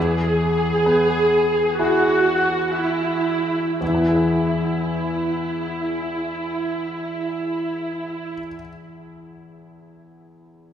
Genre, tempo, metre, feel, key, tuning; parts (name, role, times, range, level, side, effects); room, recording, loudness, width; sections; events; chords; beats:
cinematic, emotional film score for orchestra; 57-69 BPM; 4/4; rubato; E major; A4 = 443 Hz
clear baby grand piano; accompaniment; 0.0-10.7 s; E2 to E5; -24 LUFS; left 2 dB
warm symphonic viola section; accompaniment; 0.0-8.3 s; E4 to G#4; -21 LUFS; right 2 dB
wet cathedral reverb, RT60 4.5 s; recorded in a church or concert hall; -19 LUFS; side -9 dB against mid
0.0-3.8 A section; 3.8-7.9 B section
slowing down 0.0-3.8
0.0 E
0.85 1.78 2.76 | 3.81 4.84 5.87 6.88